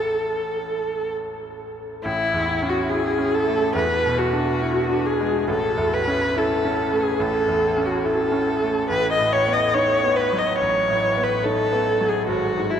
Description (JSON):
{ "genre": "classical, romantic duo for viola and grand piano", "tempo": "70 BPM", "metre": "4/4", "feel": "rubato", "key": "A major", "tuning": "A4 = 440 Hz", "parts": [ { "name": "rich viola", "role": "melody", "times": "0.0-12.8 s", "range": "E4 to D#5", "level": "-20 LUFS", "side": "equal", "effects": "none" }, { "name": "bright concert grand piano", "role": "accompaniment", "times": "0.0-12.8 s", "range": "G#1 to E4", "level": "-25 LUFS", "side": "right 1 dB", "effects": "none" } ], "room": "wet cathedral reverb, RT60 7.1 s", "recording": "in a vast, echoing space", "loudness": "-19 LUFS", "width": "side -8 dB against mid", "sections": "0.0-2.0 A section; 2.0-12.8 A section", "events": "none", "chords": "0.0 A; 3.8 E7; 5.5 A; 8.9 B7/A; 12.3 N.C.", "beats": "0.22 1.14 | 2.05 2.91 3.76 4.63 | 5.49 6.36 7.21 8.05 | 8.90 9.74 10.60 11.45 | 12.29" }